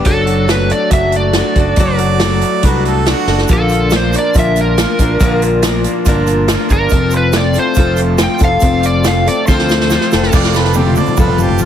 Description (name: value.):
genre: folk rock and heartland rock.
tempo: 140 BPM.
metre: 4/4.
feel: straight.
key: unclear.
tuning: A4 = 440 Hz.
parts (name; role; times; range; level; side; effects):
picked steel-string acoustic guitar; accompaniment; 0.0-11.7 s; Bb2 to Bb4; -18 LUFS; left 3 dB; none.
electric guitar through a small old amp; riff; 0.0-11.7 s; F2 to F#4; -19 LUFS; left 1 dB; none.
unplugged drum kit; drums; 0.0-11.7 s; crash cymbal, hi-hat, kick drum, snare drum, toms; -15 LUFS; equal; none.
overdriven slide guitar; melody; 0.1-10.3 s; A4 to G5; -17 LUFS; equal; none.
fingered electric bass; bass; 0.1-11.7 s; F1 to D2; -16 LUFS; equal; none.
warm harmonica; second line; 1.8-3.4, 10.3-11.7 s; F4 to D5; -20 LUFS; right 8 dB; none.
egg shaker; percussion; 3.5-11.7 s; none; -29 LUFS; right 14 dB; none.
room: light reverb, small room ambience.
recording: heavily compressed radio sound, multiband compression.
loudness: -10 LUFS.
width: side -9 dB against mid.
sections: 0.0-10.3 A section; 10.3-11.7 B section.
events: electric slide guitar solo 0.0-10.3; drum fill 3.3, 9.5-10.3, 10.3-11.7.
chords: 0.1 D/F#; 3.5 Bb; 6.9 F.